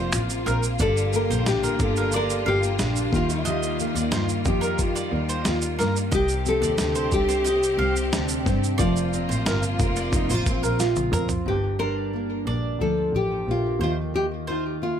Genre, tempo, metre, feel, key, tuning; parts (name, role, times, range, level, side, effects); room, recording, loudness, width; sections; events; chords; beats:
acoustic pop; 90 BPM; 4/4; straight; A4 = 440 Hz
fingerpicked steel-string acoustic guitar; accompaniment; 0.0-15.0 s; G2 to Bb4; -27 LUFS; left 1 dB; double-tracked left and right
clear studio string section; sustained chords; 0.0-11.4 s; C3 to G4; -32 LUFS; left 1 dB
bowl-back mandolin; arpeggios; 0.0-14.6 s; Bb4 to F5; -31 LUFS; right 3 dB; plate reverb, tape echo
warm double bass; bass; 0.0-14.9 s; F1 to G2; -27 LUFS; equal
dusty soul sampler-style drum kit; drums; 0.1-11.4 s; finger snaps, kick drum, shaker, snare drum, toms; -27 LUFS; equal; overdrive
nylon-string guitar; melody; 0.8-15.0 s; Eb4 to Bb4; -26 LUFS; left 1 dB; plate reverb, tape echo
light reverb; -21 LUFS; side -8 dB against mid
0.0-11.5 A section; 11.5-15.0 B section
drum fill 10.8-11.5
0.0 Fsus4; 0.8 Gm7; 3.1 Ebadd9; 6.1 Cmadd9; 8.8 Fsus4; 11.5 Gm7; 13.8 Ebadd9
0.14 | 0.80 1.46 2.13 2.79 | 3.46 4.12 4.79 5.46 | 6.12 6.79 7.45 8.12 | 8.79 9.46 10.12 10.79 | 11.46 12.13 12.80 13.47 | 14.14 14.81